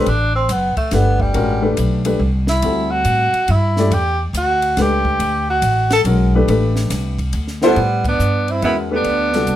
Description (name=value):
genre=modal jazz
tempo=140 BPM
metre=3/4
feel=swing 66% on 8ths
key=A dorian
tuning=A4 = 441 Hz
part: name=mellow tenor saxophone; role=melody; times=0.0-9.6 s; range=G3 to A4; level=-18 LUFS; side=right 1 dB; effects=none
part: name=warm upright piano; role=accompaniment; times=0.0-9.6 s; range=C3 to D5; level=-19 LUFS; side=left 2 dB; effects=none
part: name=upright bass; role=bass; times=0.0-9.6 s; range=F#1 to A2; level=-18 LUFS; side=equal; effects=none
part: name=compact cocktail drum kit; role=drums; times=0.1-9.6 s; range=hi-hat, kick drum, ride cymbal, snare drum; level=-28 LUFS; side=equal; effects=none
part: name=breathy alto saxophone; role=second line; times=7.6-9.6 s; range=G3 to C4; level=-23 LUFS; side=right 4 dB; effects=none
room=moderate club reverb, RT60 0.6 s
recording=none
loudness=-14 LUFS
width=side -12 dB against mid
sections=0.0-7.8 A section; 7.8-9.6 B section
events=tenor saxophone solo 0.0-7.8; band accent 8.0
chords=0.0 A9sus4